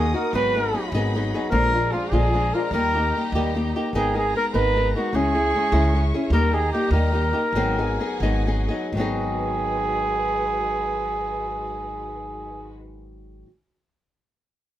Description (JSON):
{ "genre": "mexican folk, mariachi", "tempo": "79-102 BPM (dotted quarters)", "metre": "6/8", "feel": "straight", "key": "G# minor", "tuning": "A4 = 440 Hz", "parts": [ { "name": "mellow trumpet", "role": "melody", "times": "0.0-12.7 s", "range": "E#4 to B4", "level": "-24 LUFS", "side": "right 1 dB", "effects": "none" }, { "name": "flamenco guitar", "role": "accompaniment", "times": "0.0-13.5 s", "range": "G#2 to A#4", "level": "-26 LUFS", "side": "left 2 dB", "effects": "none" }, { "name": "warm symphonic violin section", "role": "sustained chords", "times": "0.0-12.7 s", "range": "G#3 to D#6", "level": "-34 LUFS", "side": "equal", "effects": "none" }, { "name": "upright bass", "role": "bass", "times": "0.0-13.4 s", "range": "G#1 to D#2", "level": "-25 LUFS", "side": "equal", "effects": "none" } ], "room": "light reverb", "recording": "none", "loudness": "-20 LUFS", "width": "side -12 dB against mid", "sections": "0.0-8.9 A section; 8.9-12.0 B section", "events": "slowing down 6.3-8.9", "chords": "0.3 G#m7; 1.5 A#7; 2.7 D#; 3.9 G#madd9; 5.1 C#m; 6.3 D#; 7.5 G#m7" }